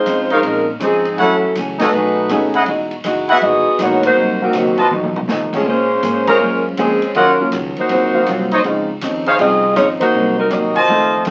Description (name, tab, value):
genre	jazz, big band swing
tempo	161 BPM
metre	4/4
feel	swing 66% on 8ths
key	unclear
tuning	A4 = 438 Hz
part	mellow saxophone section	melody	0.0-11.1 s	Eb3 to F5	-17 LUFS	equal	none
part	clear concert grand piano	accompaniment	0.0-11.3 s	Gb3 to F5	-24 LUFS	equal	none
part	hollow-body jazz guitar	accompaniment	0.1-11.3 s	F2 to C5	-24 LUFS	equal	none
part	upright bass	bass	0.1-11.3 s	E1 to Bb2	-31 LUFS	equal	none
part	swinging big-band drum kit	drums	0.1-11.3 s	crash cymbal, hi-hat, kick drum, ride cymbal, snare drum, toms	-32 LUFS	equal	none
part	clear trumpet section	stabs	0.3-11.2 s	Eb4 to Bb5	-17 LUFS	equal	none
room	wet studio ambience, RT60 0.5 s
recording	very old 78 rpm record, vinyl crackle, nothing above 8.0 kHz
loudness	-15 LUFS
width	mono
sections	0.0-11.3 A section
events	band accent 1.7, 4.0, 6.2, 9.9; drum fill 4.9-5.3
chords	0.0 Dbmaj9; 1.2 Gbm7; 1.9 Cb13; 2.7 Emaj9; 4.2 Cm7b5; 4.9 Cb7#11; 5.7 Bbm9; 7.1 Ebm9; 7.9 Ab13; 10.1 Cm7b5